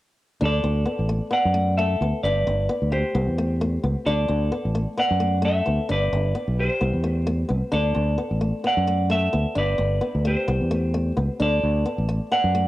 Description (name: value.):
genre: highlife guitar band.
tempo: 131 BPM.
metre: 4/4.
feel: swing 54% on 16ths.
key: D mixolydian.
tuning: A4 = 440 Hz.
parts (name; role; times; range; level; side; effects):
semi-hollow electric guitar; melody; 0.4-12.7 s; G4 to F#5; -24 LUFS; equal; cassette tape, analog delay.
fingerpicked swing-style acoustic guitar; accompaniment; 0.4-12.7 s; A3 to D4; -30 LUFS; left 2 dB; none.
fingered electric bass; bass; 0.4-12.7 s; G1 to F#2; -22 LUFS; equal; none.
room: light reverb.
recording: home recording on cassette.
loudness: -20 LUFS.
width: side -16 dB against mid.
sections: 0.4-12.7 A section.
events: none.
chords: 0.4 D; 2.2 Gadd9; 3.2 C; 4.1 D; 5.9 G; 6.8 C; 7.7 D; 9.6 Gadd9; 10.5 C; 11.4 D.